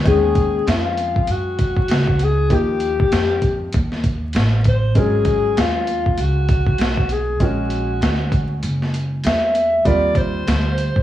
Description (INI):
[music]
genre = hip hop, jazz-hop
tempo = 98 BPM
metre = 4/4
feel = swing 57% on 16ths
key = unclear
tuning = A4 = 439 Hz
[part]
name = clear upright piano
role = accompaniment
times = 0.0-11.0 s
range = Eb3 to Bb4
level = -26 LUFS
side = right 2 dB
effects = none
[part]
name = upright bass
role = bass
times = 0.0-11.0 s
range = F#1 to Gb2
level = -21 LUFS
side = equal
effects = tube saturation
[part]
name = breathy alto saxophone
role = melody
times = 0.1-11.0 s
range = F4 to Fb5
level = -20 LUFS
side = left 2 dB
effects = none
[part]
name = boom bap sampler-style drum kit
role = drums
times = 0.1-11.0 s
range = hi-hat, kick drum, snare drum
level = -20 LUFS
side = equal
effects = none
[sound]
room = little or no reverb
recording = worn, warbling old tape, cassette tape, vinyl crackle, warbly pitch drift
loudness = -16 LUFS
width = side -13 dB against mid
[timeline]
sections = 0.1-11.0 A section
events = kick muted 8.6-9.9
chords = 0.1 Ebm11; 2.5 Eb; 5.0 Abm11; 7.4 Bb7alt; 9.9 Eb69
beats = | 0.06 0.67 1.28 1.89 | 2.51 3.12 3.73 4.34 | 4.96 5.57 6.18 6.79 | 7.41 8.02 8.63 9.24 | 9.85 10.47